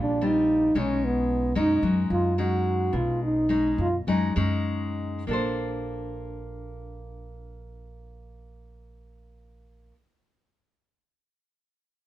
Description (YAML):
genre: bossa nova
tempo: 96-113 BPM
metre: 4/4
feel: straight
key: unclear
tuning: A4 = 440 Hz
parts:
  - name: breathy trombone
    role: melody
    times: 0.0-4.0 s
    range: B3 to F#4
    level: -24 LUFS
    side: right 1 dB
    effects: none
  - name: nylon-string guitar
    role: accompaniment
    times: 0.0-10.0 s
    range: Bb2 to C5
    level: -28 LUFS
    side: left 3 dB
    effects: none
  - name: upright bass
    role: bass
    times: 0.0-9.9 s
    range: Bb1 to F#2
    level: -31 LUFS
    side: right 1 dB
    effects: none
room: light reverb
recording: minimal, uncompressed stereo recording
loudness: -23 LUFS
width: side -14 dB against mid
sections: 0.0-5.3 A section; 5.3-10.3 B section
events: trombone solo 0.0-5.3; slowing down 0.8-5.3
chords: 0.0 Eb69; 0.8 B69; 5.3 Bbmaj9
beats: 0.22 | 0.76 1.29 1.83 2.37 | 2.93 3.49 4.07 4.67 | 5.28 5.91 6.54 7.16 | 7.79 8.41 9.04 9.66